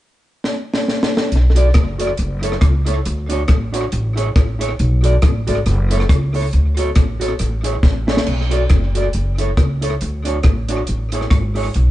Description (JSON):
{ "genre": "ska", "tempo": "138 BPM", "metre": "4/4", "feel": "swing 57% on 8ths", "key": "unclear", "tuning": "A4 = 439 Hz", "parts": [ { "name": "compact cocktail drum kit", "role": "drums", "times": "0.4-11.9 s", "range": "crash cymbal, hi-hat, kick drum, rim click, snare drum", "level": "-17 LUFS", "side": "equal", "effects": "tape echo" }, { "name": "upright bass", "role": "bass", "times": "1.3-11.9 s", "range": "F#1 to D2", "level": "-17 LUFS", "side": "equal", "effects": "none" }, { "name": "electric guitar at the edge of break-up", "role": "accompaniment", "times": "1.6-11.7 s", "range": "D4 to D5", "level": "-23 LUFS", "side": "right 1 dB", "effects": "tube saturation" } ], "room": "light reverb", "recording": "band playing live in one room, nothing above 10.3 kHz", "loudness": "-15 LUFS", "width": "side -15 dB against mid", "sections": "0.0-1.3 A section; 1.3-8.3 B section; 8.3-11.9 C section", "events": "drum fill 0.4-1.3, 7.8-8.3", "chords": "0.0 N.C.; 1.3 Bm7; 2.2 F#m7; 3.1 Dmaj7; 3.9 Amaj7; 4.8 Bm7; 5.7 F#m7; 6.5 Dmaj7; 7.4 Amaj7; 8.3 Bm7; 9.1 F#m7; 10.0 Dmaj7; 10.9 Amaj7", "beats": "0.01 0.44 0.88 | 1.31 1.75 2.18 2.62 | 3.05 3.49 3.92 4.36 | 4.79 5.22 5.66 6.09 | 6.53 6.96 7.40 7.83 | 8.27 8.70 9.14 9.57 | 10.01 10.44 10.88 11.31 | 11.75" }